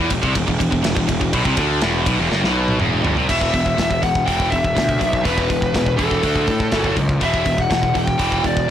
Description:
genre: heavy metal.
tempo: 122 BPM.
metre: 4/4.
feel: straight.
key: E minor.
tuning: A4 = 442 Hz.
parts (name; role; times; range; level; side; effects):
heavy high-gain guitar; riff; 0.0-8.7 s; E2 to D4; -21 LUFS; equal; distortion.
fuzz picked electric bass; bass; 0.0-8.7 s; E1 to A2; -21 LUFS; equal; overdrive.
tight metal drum kit; drums; 0.1-8.7 s; crash cymbal, hi-hat, kick drum, ride cymbal, snare drum, toms; -22 LUFS; equal; none.
high-gain lead guitar; melody; 3.3-8.7 s; A4 to G5; -21 LUFS; left 1 dB; distortion.
room: small room ambience.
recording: blown-out, overdriven recording, overdrive.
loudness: -16 LUFS.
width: side -10 dB against mid.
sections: 0.0-3.3 A section; 3.3-8.7 B section.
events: drum fill 2.3-3.3.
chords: 0.0 E5; 6.2 D5; 6.7 F#5; 7.2 Em.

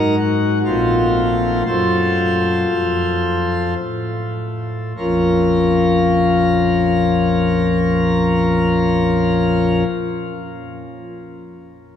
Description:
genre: classical, chorale-style piece for pipe organ.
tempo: 50-67 BPM.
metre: 4/4.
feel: rubato.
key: Bb minor.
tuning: A4 = 441 Hz.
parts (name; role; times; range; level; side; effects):
pipe organ, plenum; solo; 0.0-9.8 s; Bb1 to C5; -15 LUFS; left 1 dB; none.
room: wet cathedral reverb, RT60 5.8 s.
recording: none.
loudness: -15 LUFS.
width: side -9 dB against mid.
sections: 0.0-5.0 A section; 5.0-9.7 B section.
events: slowing down 0.0-5.0.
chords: 0.0 Ebm; 0.7 F/Bb; 5.0 Bbm.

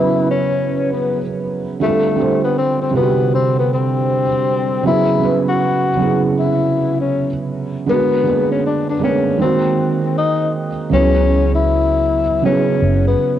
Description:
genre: hip hop.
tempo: 79 BPM.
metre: 4/4.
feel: swing 62% on 16ths.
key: unclear.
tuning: A4 = 441 Hz.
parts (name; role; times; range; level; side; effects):
breathy tenor saxophone; melody; 0.0-13.4 s; A3 to F#4; -18 LUFS; left 5 dB; low-pass filter, tape echo.
felt-muted upright piano; accompaniment; 0.0-13.4 s; C3 to C5; -17 LUFS; right 4 dB; cassette tape, low-pass filter.
vintage muted fingered electric bass; bass; 10.9-13.1 s; F#1 to C#2; -17 LUFS; equal; none.
room: moderate spring reverb, RT60 2.5 s.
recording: home recording on cassette, nothing above 10.9 kHz.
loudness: -14 LUFS.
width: side -11 dB against mid.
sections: 0.0-10.9 A section; 10.9-13.4 B section.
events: none.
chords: 0.0 C#m7; 1.8 F69; 4.8 E69; 7.9 G#m7b5; 9.4 G#7; 10.9 C#m7.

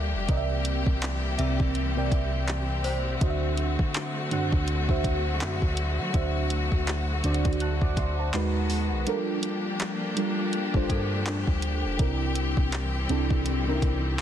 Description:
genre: contemporary R&B.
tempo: 82 BPM.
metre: 4/4.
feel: swing 58% on 16ths.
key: unclear.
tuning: A4 = 441 Hz.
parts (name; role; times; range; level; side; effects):
mellow FM electric piano; accompaniment; 0.0-14.2 s; C3 to F#6; -29 LUFS; right 1 dB; chorus, phaser.
clear studio string section; sustained chords; 0.0-14.2 s; D3 to G4; -32 LUFS; left 2 dB; none.
soft 808-style bass; bass; 0.0-14.2 s; F1 to F#3; -29 LUFS; equal; none.
synth chime; texture; 0.0-6.4, 10.9-12.2 s; D4 to E5; -39 LUFS; left 2 dB; ensemble chorus, ping-pong delay.
smooth R&B drum kit; drums; 0.3-14.2 s; handclaps, hi-hat, kick drum; -29 LUFS; equal; vintage 12-bit sampler grit.
room: little or no reverb.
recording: dense, heavily limited modern master.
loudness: -24 LUFS.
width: side -10 dB against mid.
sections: 0.0-14.2 A section.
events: kick muted 9.1-10.5.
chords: 0.3 C7; 3.2 D7; 8.3 Abm9; 9.1 Gm9; 12.0 C7.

